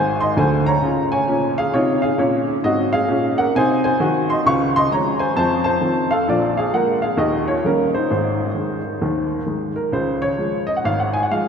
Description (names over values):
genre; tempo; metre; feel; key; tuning
jazz, stride piano; 132 BPM; 4/4; swing 62% on 8ths; Db major; A4 = 440 Hz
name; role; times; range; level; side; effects
clear upright piano; solo; 0.0-11.5 s; Ab1 to Db6; -17 LUFS; equal; none
room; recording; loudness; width
wet cathedral reverb, RT60 6.1 s; in a vast, echoing space; -17 LUFS; side -6 dB against mid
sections
0.0-9.9 A section; 9.9-11.5 A section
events
none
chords
0.0 Ab; 0.8 Db; 2.6 Ab7; 4.5 Db; 5.4 F7; 6.3 Bb5; 7.2 Eb7; 8.1 Ab; 9.9 Db